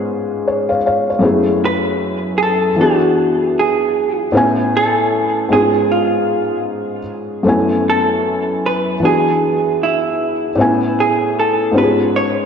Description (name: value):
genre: hip hop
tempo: 77 BPM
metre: 4/4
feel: swing 64% on 16ths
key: F# minor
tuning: A4 = 440 Hz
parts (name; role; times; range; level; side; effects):
- felt-muted upright piano; accompaniment; 0.0-12.5 s; F#2 to G#5; -15 LUFS; left 1 dB; low-pass filter
- vintage hollow-body jazz guitar; melody; 1.7-12.5 s; E4 to C#5; -17 LUFS; right 2 dB; low-pass filter, diffuse ambient delay
room: wet lush hall reverb, RT60 2.8 s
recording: dreamy mix soaked in reverb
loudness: -13 LUFS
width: side -7 dB against mid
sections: 0.0-12.5 A section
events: none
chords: 0.0 C#7/G#; 1.2 F#m11; 2.8 E9; 4.4 Amaj9; 5.5 C#7/G#; 7.5 F#m11; 9.0 E9; 10.6 Amaj9; 11.8 C#7/G#